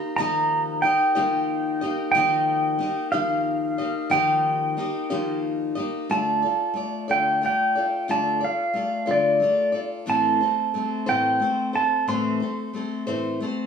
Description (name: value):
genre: folk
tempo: 60 BPM (dotted quarters)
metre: 6/8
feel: straight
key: unclear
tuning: A4 = 435 Hz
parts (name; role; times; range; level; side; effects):
- pedal steel guitar; melody; 0.0-13.4 s; D5 to C6; -22 LUFS; right 2 dB; plate reverb
- picked steel-string acoustic guitar; accompaniment; 0.0-13.7 s; A2 to Eb5; -26 LUFS; left 3 dB; none
room: light reverb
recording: small room ambience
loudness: -21 LUFS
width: side -6 dB against mid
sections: 0.0-6.1 A section; 6.1-13.7 B section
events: none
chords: 0.0 Ebadd9; 6.1 Dm; 10.1 Am